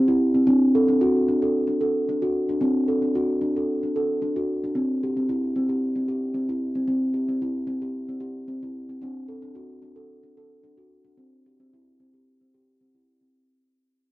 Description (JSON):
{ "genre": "world meditative, meditative tuned percussion", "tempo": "112 BPM", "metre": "4/4", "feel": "straight", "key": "C lydian", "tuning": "A4 = 440 Hz", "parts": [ { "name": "steel tongue drum", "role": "solo", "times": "0.0-13.3 s", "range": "C4 to A4", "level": "-22 LUFS", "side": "equal", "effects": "cassette tape, tape echo" } ], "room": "wet booth ambience, RT60 0.2 s", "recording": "home recording on cassette", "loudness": "-21 LUFS", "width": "side -18 dB against mid", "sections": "0.0-13.3 A section", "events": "fade-out 0.0-13.3", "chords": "0.5 D/C; 4.7 C; 9.0 D/C; 11.2 C" }